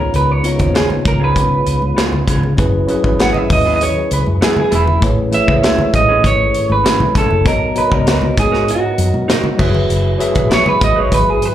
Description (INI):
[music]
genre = lush 1970s-style soul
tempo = 98 BPM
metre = 4/4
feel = straight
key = unclear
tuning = A4 = 442 Hz
[part]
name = electric guitar through a small old amp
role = melody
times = 0.0-11.5 s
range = E4 to F#5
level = -17 LUFS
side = right 2 dB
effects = slapback echo
[part]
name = tine electric piano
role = accompaniment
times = 0.0-11.5 s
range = C#3 to E5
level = -19 LUFS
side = left 2 dB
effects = medium stereo tremolo, slapback echo
[part]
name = mellow tonewheel organ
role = sustained chords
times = 0.0-11.5 s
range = C#3 to B4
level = -28 LUFS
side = left 1 dB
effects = none
[part]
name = vintage muted fingered electric bass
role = bass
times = 0.0-11.4 s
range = E1 to C#3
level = -18 LUFS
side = equal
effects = none
[part]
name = modern studio drum kit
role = drums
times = 0.1-11.5 s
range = crash cymbal, hi-hat, kick drum, snare drum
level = -18 LUFS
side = equal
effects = none
[part]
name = congas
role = percussion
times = 0.1-11.5 s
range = none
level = -24 LUFS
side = right 2 dB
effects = slapback echo
[part]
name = electric guitar through a small old amp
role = riff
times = 0.7-11.1 s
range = B3 to B4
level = -24 LUFS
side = right 4 dB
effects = slapback echo
[sound]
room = light reverb, small room ambience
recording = live gig heard through the venue's PA, club reverb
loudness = -12 LUFS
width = side -11 dB against mid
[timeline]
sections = 0.0-11.5 A section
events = clean electric guitar solo 0.0-11.5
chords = 0.0 C#7; 2.6 F#9sus4; 5.0 Amaj7; 7.5 Bmaj7; 9.6 F#9sus4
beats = | 0.14 0.75 1.36 1.97 | 2.58 3.19 3.80 4.41 | 5.02 5.63 6.24 6.85 | 7.46 8.07 8.68 9.29 | 9.90 10.51 11.12